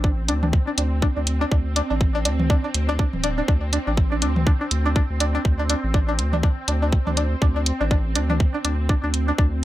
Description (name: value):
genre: minimal techno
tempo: 122 BPM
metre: 4/4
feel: swing 58% on 16ths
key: unclear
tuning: A4 = 442 Hz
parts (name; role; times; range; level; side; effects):
- string-like resonator pluck; riff; 0.0-9.5 s; D4; -26 LUFS; left 1 dB; chorus, phaser, sidechain pumping, digital delay
- saturated sub bass; bass; 0.0-9.6 s; D1 to D2; -23 LUFS; equal; sidechain pumping
- electronic kick drum; drums; 0.0-9.5 s; none; -19 LUFS; equal; none
- swarming drone; texture; 0.0-9.6 s; C4; -31 LUFS; right 3 dB; built-in reverb, phaser, sidechain pumping
- electronic hi-hat; drums; 0.3-9.3 s; none; -24 LUFS; equal; none
- electronic toms; percussion; 0.4-8.4 s; none; -27 LUFS; left 1 dB; overdrive
room: light reverb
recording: none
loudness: -19 LUFS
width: side -15 dB against mid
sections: 0.0-9.6 A section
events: none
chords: 0.0 D7(no3)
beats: 0.04 0.53 1.02 | 1.51 2.01 2.50 2.99 | 3.48 3.97 4.47 4.96 | 5.45 5.94 6.43 6.92 | 7.42 7.91 8.40 8.89 | 9.38